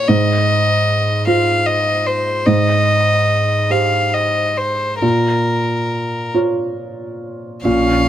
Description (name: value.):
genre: neoclassical piano and strings.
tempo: 45-51 BPM (dotted quarters).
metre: 6/8.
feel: rubato.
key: Bb dorian.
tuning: A4 = 441 Hz.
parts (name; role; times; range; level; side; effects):
rich violin; melody; 0.0-8.1 s; Bb4 to F5; -17 LUFS; left 2 dB; none.
felt-muted upright piano; accompaniment; 0.0-8.1 s; Ab2 to Db5; -17 LUFS; right 2 dB; none.
dark viola; accompaniment; 7.7-8.1 s; Db4; -18 LUFS; right 3 dB; none.
warm double bass; bass; 7.7-8.1 s; Bb1; -20 LUFS; right 1 dB; none.
room: light reverb.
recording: none.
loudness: -14 LUFS.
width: side -11 dB against mid.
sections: 0.0-7.7 A section.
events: none.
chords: 0.1 Fm7/Ab; 2.5 Abmaj7; 5.0 Bbm.